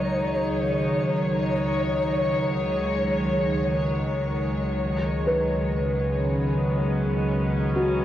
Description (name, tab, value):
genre	ambient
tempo	free time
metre	none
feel	none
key	unclear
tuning	A4 = 439 Hz
part	mellow long shakuhachi	melody	0.0-3.8 s	Db5	-32 LUFS	left 1 dB	cassette tape, plate reverb, analog delay
part	warm chamber string section	sustained chords	0.0-8.0 s	Db2 to Db5	-23 LUFS	equal	low-pass filter, cassette tape
part	twinkling granular texture	texture	0.0-4.8 s	Db6	-44 LUFS	right 3 dB	none
part	analog drone	drone	5.5-8.0 s	Db3 to Ab3	-28 LUFS	equal	chorus, cassette tape
part	felt-muted upright piano	arpeggios	5.3-8.0 s	Gb4 to Cb5	-28 LUFS	equal	cassette tape, analog delay
room	wet booth ambience, RT60 0.2 s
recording	home recording on cassette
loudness	-22 LUFS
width	side -12 dB against mid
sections	0.0-4.8 A section; 4.8-8.0 B section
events	none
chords	0.0 Cbsus2/Db (rootless); 4.8 Abm7/Db